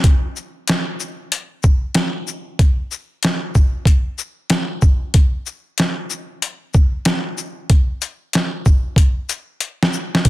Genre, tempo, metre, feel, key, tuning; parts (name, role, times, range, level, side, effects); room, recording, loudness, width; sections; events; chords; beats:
hip hop; 94 BPM; 4/4; swing 66% on 16ths
boom bap sampler-style drum kit; drums; 0.0-10.3 s; hi-hat, kick drum, shaker, snare drum; -15 LUFS; equal
light reverb; dense, heavily limited modern master; -16 LUFS; side -17 dB against mid
0.0-10.3 A section
drum fill 9.0-10.3
| 0.04 0.68 1.31 1.95 | 2.59 3.23 3.87 4.51 | 5.14 5.78 6.42 7.06 | 7.70 8.34 8.97 9.61 | 10.25